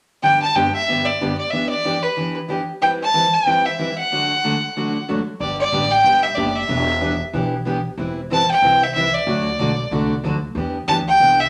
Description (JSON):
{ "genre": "country, western swing", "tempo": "186 BPM", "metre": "4/4", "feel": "swing 61% on 8ths", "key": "G major", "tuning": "A4 = 440 Hz", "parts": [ { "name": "clear fiddle", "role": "melody", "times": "0.2-11.5 s", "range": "B4 to A5", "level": "-19 LUFS", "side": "equal", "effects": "none" }, { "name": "picked steel-string acoustic guitar", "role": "accompaniment", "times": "0.2-11.4 s", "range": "G2 to B4", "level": "-25 LUFS", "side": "equal", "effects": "none" }, { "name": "upright bass", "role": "bass", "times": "5.4-11.5 s", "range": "E1 to E2", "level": "-29 LUFS", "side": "equal", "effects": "none" } ], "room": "wet studio reverb, RT60 0.8 s", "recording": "none", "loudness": "-19 LUFS", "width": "mono", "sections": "0.2-5.4 A section; 5.4-11.5 B section", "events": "none", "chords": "0.2 G; 1.5 Em7; 2.8 Cmaj7/E; 4.1 D; 5.4 G; 6.7 Em7; 8.0 Cmaj7/E; 9.3 D; 10.6 Em7", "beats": "| 0.23 0.55 0.87 1.20 | 1.52 1.84 2.17 2.49 | 2.81 3.14 3.46 3.79 | 4.11 4.43 4.75 5.08 | 5.40 5.72 6.05 6.37 | 6.69 7.02 7.34 7.66 | 7.98 8.31 8.63 8.95 | 9.27 9.60 9.92 10.24 | 10.56 10.89 11.21" }